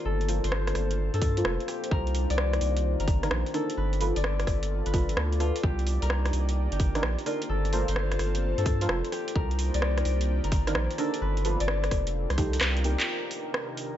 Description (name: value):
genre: UK garage, two-step garage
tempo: 129 BPM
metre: 4/4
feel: swing 67% on 16ths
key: C dorian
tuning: A4 = 439 Hz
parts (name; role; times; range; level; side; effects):
- concert harp; melody; 0.0-14.0 s; F4 to D5; -35 LUFS; left 6 dB; dub echo
- airy breathy pad; sustained chords; 0.0-14.0 s; C3 to Bb4; -39 LUFS; right 1 dB; chorus, sidechain pumping
- deep dark ambient pad; texture; 0.0-14.0 s; Eb3 to Bb5; -37 LUFS; left 2 dB; chorus, built-in reverb, sidechain pumping
- saturated sub bass; bass; 0.1-13.0 s; F1 to G2; -27 LUFS; equal; sidechain pumping
- garage drum kit; drums; 0.2-13.9 s; handclaps, hi-hat, rim click; -32 LUFS; right 1 dB; overdrive
- deep mellow chord stab; stabs; 0.3-13.0 s; D4 to C5; -33 LUFS; right 2 dB; chorus, phaser, cassette tape, tape echo
- electronic kick drum; drums; 1.2-12.5 s; none; -27 LUFS; equal; none
room: digital ambience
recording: nothing above 7.8 kHz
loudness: -25 LUFS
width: side -11 dB against mid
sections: 0.0-13.1 A section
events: kick drops out 12.6-13.1; drum fill 12.6-13.1; band accent 13.0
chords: 0.1 Gm11; 1.7 Cm9; 3.8 G7; 5.6 Cm9; 7.5 Gm11; 9.1 Cm9; 11.2 G7; 12.1 F9sus4; 13.1 Cm9